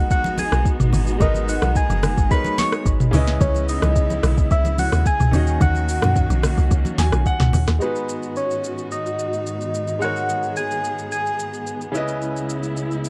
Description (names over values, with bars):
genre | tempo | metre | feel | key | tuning
amapiano | 109 BPM | 4/4 | straight | G# minor | A4 = 438 Hz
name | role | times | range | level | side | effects
soft struck synth lead | melody | 0.0-11.9 s | B4 to C#6 | -27 LUFS | equal | chorus, delay
clear concert grand piano | accompaniment | 0.0-13.1 s | C#3 to G#5 | -30 LUFS | equal | none
warm studio string section | sustained chords | 0.0-13.1 s | C#2 to G#4 | -32 LUFS | equal | none
woody log drum bass | bass | 0.0-7.8 s | F#1 to F#2 | -22 LUFS | equal | none
smooth R&B drum kit | drums | 0.1-13.1 s | hi-hat, kick drum, rim click, shaker, snare drum, toms | -24 LUFS | equal | overdrive
congas | percussion | 0.2-7.7 s | none | -29 LUFS | equal | none
room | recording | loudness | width
little or no reverb | dark, warm production | -20 LUFS | mono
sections
0.0-7.8 A section; 7.8-13.1 B section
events
drop 0.0-7.8; grand piano fill 6.7-7.8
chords
0.0 G#m7; 3.1 C#m7; 5.3 D#m7; 7.8 G#m7; 11.9 C#m7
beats
0.10 0.65 | 1.20 1.75 2.31 2.86 | 3.41 3.96 4.51 5.06 | 5.61 6.16 6.71 7.26 | 7.81 8.36 8.91 9.46 | 10.01 10.56 11.11 11.66 | 12.21 12.76